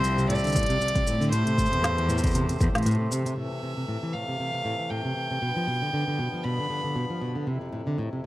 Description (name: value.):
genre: folktronica.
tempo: 117 BPM.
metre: 4/4.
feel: swing 56% on 16ths.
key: C major.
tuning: A4 = 440 Hz.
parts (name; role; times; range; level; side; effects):
warm violin; melody; 0.0-7.2 s; C5 to B5; -30 LUFS; equal; digital delay.
hand-pumped harmonium; sustained chords; 0.0-8.3 s; F2 to C5; -35 LUFS; left 1 dB; none.
flamenco guitar; arpeggios; 0.0-8.2 s; A2 to F3; -29 LUFS; equal; low-pass filter, digital delay.
warm cello; bass; 0.0-3.2 s; C2 to C3; -27 LUFS; equal; none.
organic electronic drum kit; drums; 0.0-3.4 s; hi-hat, shaker, snare drum; -32 LUFS; equal; none.
electronic kick drum; drums; 0.6-2.7 s; none; -27 LUFS; equal; none.
room: moderate studio ambience, RT60 0.5 s.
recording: vinyl crackle.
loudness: -24 LUFS.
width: side -16 dB against mid.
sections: 0.0-3.4 A section; 3.4-8.3 B section.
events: filter sweep on nylon-string guitar 3.4-8.3.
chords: 0.0 Dm7; 1.3 Am7; 3.4 C6; 5.4 G7; 7.5 Dm7/F.